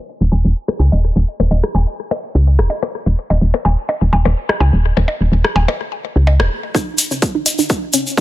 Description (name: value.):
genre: minimal techno.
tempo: 126 BPM.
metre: 4/4.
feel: swing 53% on 16ths.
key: unclear.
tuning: A4 = 435 Hz.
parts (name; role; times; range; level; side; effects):
woody FM bass; bass; 0.2-6.5 s; Eb1 to Db2; -12 LUFS; equal; sidechain pumping.
electronic percussion blips and rim click; percussion; 0.3-6.5 s; none; -20 LUFS; left 2 dB; studio ambience, soft clipping on snare, ping-pong delay.
resonant blip pluck; riff; 6.7-8.2 s; Db4 to Eb5; -20 LUFS; right 2 dB; chorus, cassette tape, sidechain pumping, tape echo.
electronic kick drum; drums; 6.7-8.2 s; none; -16 LUFS; equal; high-pass filter on kick, studio ambience.
egg shaker; percussion; 6.8-8.2 s; none; -20 LUFS; left 3 dB; none.
electronic hi-hat; drums; 7.0-8.0 s; none; -16 LUFS; right 1 dB; studio ambience, soft clipping on snare.
room: digital ambience.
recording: dense, heavily limited modern master, low-pass filter.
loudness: -14 LUFS.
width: side -15 dB against mid.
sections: 0.0-6.7 A section; 6.7-8.2 B section.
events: filter sweep 0.0-6.7; build-up 6.7-8.2.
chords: 0.0 Dbsus2/Eb; 6.7 Dbsus2.